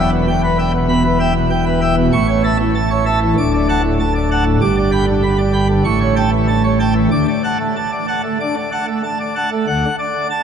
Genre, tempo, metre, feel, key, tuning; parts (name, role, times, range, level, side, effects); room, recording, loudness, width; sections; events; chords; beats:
classical, organ toccata; 96 BPM; 4/4; straight; D major; A4 = 440 Hz
pipe organ, plenum; solo; 0.0-10.4 s; D1 to D6; -14 LUFS; right 1 dB
wet huge ambient reverb, RT60 7.4 s; in a vast, echoing space; -14 LUFS; side -7 dB against mid
0.0-9.7 A section
0.0 Em; 2.1 A; 3.4 D; 4.6 G; 5.9 A7; 7.1 D
0.27 0.89 1.51 | 2.13 2.75 3.37 3.99 | 4.61 5.23 5.85 6.48 | 7.12 7.76 8.39 9.04 | 9.67 10.30